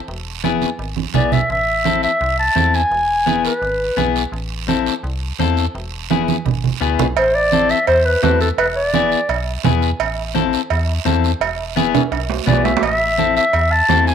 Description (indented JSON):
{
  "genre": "latin, cumbia",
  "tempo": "169 BPM",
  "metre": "4/4",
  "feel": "straight",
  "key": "A harmonic minor",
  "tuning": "A4 = 440 Hz",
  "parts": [
    { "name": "metallic FM bass", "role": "bass", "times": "0.1-14.1 s", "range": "E1 to E2", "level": "-23 LUFS", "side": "equal", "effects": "none" },
    { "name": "guiro", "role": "percussion", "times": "0.1-14.1 s", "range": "none", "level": "-30 LUFS", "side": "right 15 dB", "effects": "none" },
    { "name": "electric guitar at the edge of break-up", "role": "accompaniment", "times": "0.4-14.1 s", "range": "B3 to A4", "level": "-21 LUFS", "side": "left 11 dB", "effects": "none" },
    { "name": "congas", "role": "percussion", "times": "0.4-14.1 s", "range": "none", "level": "-20 LUFS", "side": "right 9 dB", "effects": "none" },
    { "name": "warm clarinet", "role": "melody", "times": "1.2-4.1, 7.2-9.4, 12.5-14.1 s", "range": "A4 to A5", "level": "-16 LUFS", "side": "equal", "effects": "none" },
    { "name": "cowbell and timbales", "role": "percussion", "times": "7.2-14.1 s", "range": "none", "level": "-22 LUFS", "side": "right 11 dB", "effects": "none" }
  ],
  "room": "moderate spring reverb, RT60 1.2 s, small room ambience",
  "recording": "1960s-style stereo with parts hard left and right",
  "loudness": "-15 LUFS",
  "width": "side -8 dB against mid",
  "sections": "0.0-7.2 A section; 7.2-14.1 B section",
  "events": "drum fill 1.0-1.5, 6.1-7.2, 11.9-12.8",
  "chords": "0.1 E; 1.5 Am; 2.9 E; 4.3 Am; 5.8 E; 7.2 Am; 8.6 E7; 10.0 Am; 11.4 E; 12.8 Am",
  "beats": "| 0.08 0.44 0.79 1.15 | 1.50 1.85 2.21 2.56 | 2.92 3.27 3.62 3.98 | 4.33 4.69 5.04 5.40 | 5.75 6.11 6.46 6.82 | 7.17 7.52 7.88 8.23 | 8.59 8.94 9.29 9.65 | 10.00 10.36 10.71 11.06 | 11.42 11.77 12.12 12.48 | 12.83 13.19 13.54 13.89"
}